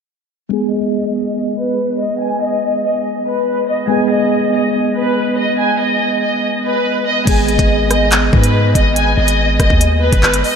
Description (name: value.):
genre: hip hop, drill.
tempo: 142 BPM.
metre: 4/4.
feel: half-time.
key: G# minor.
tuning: A4 = 440 Hz.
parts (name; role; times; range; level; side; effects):
warm studio violin section; melody; 0.5-10.6 s; B4 to G#5; -16 LUFS; equal; low-pass filter, tape echo.
mellow tine electric piano; accompaniment; 0.5-10.6 s; G#3 to G#4; -18 LUFS; equal; medium stereo tremolo, low-pass filter.
long sustained 808-style bass; bass; 7.3-10.4 s; G1 to G#2; -16 LUFS; equal; none.
drill drum kit; drums; 7.3-10.5 s; crash cymbal, handclaps, hi-hat, kick drum, rim click; -15 LUFS; equal; none.
room: wet cathedral reverb, RT60 5.5 s.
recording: dreamy mix soaked in reverb.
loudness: -13 LUFS.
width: side -6 dB against mid.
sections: 0.5-7.3 A section; 7.3-10.6 B section.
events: filter sweep 0.5-7.3.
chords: 0.5 G#m.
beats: | 0.51 0.94 1.36 1.78 | 2.20 2.62 3.05 3.47 | 3.89 4.32 4.74 5.16 | 5.58 6.01 6.43 6.85 | 7.27 7.70 8.12 8.54 | 8.96 9.39 9.81 10.23.